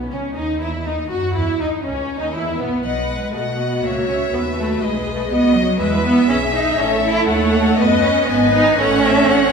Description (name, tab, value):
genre	quick classical-period movement for string orchestra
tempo	121 BPM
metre	3/4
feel	rubato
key	E major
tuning	A4 = 440 Hz
part	warm chamber violin section	second line	0.0-9.5 s	B3 to F#5	-22 LUFS	left 5 dB	none
part	rich chamber double bass section	bass	0.0-9.5 s	G#1 to B2	-25 LUFS	right 2 dB	none
part	bright chamber violin section	melody	0.1-9.5 s	B3 to G#5	-26 LUFS	left 2 dB	none
part	rich symphonic viola section	accompaniment	0.1-9.4 s	B3 to B4	-24 LUFS	equal	none
part	warm chamber cello section	bass	0.1-9.5 s	F#3 to F#4	-18 LUFS	right 2 dB	none
room	wet recital hall reverb, RT60 1.3 s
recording	recorded in a church or concert hall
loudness	-15 LUFS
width	side -5 dB against mid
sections	0.0-9.5 A section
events	none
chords	0.0 E5/B; 0.9 D#m; 1.4 E5; 2.9 B; 3.8 A#dim/C#; 4.3 B; 5.8 E; 6.8 A; 7.3 D#m7b5; 8.3 G#m; 8.8 A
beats	0.37 0.87 | 1.37 1.87 2.36 | 2.86 3.35 3.84 | 4.33 4.82 5.31 | 5.79 6.29 6.79 | 7.29 7.79 8.29 | 8.79 9.30